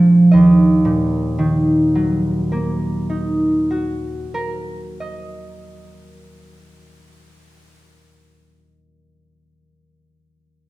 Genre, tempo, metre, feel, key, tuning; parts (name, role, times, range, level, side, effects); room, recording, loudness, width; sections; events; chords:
classical; 37 BPM; 4/4; rubato; Eb minor; A4 = 442 Hz
concert harp; accompaniment; 0.0-8.3 s; Eb2 to Bb5; -14 LUFS; right 1 dB
moderate recital hall reverb, RT60 1.2 s; -14 LUFS; side -18 dB against mid
0.3-6.8 A section
0.3 Ebm